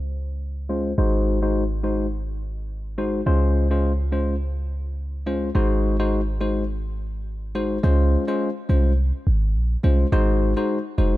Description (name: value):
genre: afrobeats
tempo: 105 BPM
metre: 4/4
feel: swing 55% on 16ths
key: Db major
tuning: A4 = 441 Hz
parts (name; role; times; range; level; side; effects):
- clean 808-style bass; bass; 0.0-11.2 s; F1 to Db2; -22 LUFS; equal; none
- bell-like tine electric piano; accompaniment; 0.7-11.2 s; Ab3 to C5; -24 LUFS; left 2 dB; low-pass filter
room: light reverb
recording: none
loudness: -20 LUFS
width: side -16 dB against mid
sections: 0.0-7.8 A section; 7.8-11.2 B section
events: filter sweep on tine electric piano 0.0-7.8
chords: 0.0 Dbmaj7; 1.0 Ab7; 3.3 Dbmaj7; 5.6 Ab7; 7.8 Dbmaj7; 10.1 Ab7